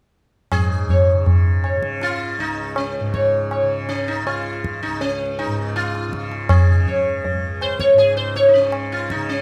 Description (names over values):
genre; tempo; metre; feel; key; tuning
indian classical, Hindustani; 80 BPM; 4/4; straight; Db raga hamsadhwani; A4 = 436 Hz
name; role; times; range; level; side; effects
sitar; melody; 0.5-9.4 s; Db4 to Db5; -22 LUFS; equal; none
tanpura; drone; 0.5-9.4 s; Db2 to Db3; -28 LUFS; equal; none
tabla; percussion; 0.5-9.4 s; none; -21 LUFS; equal; none
room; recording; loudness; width
moderate recital hall reverb, RT60 1.4 s; close, detailed microphones; -19 LUFS; mono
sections
0.5-9.4 A section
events
none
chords
none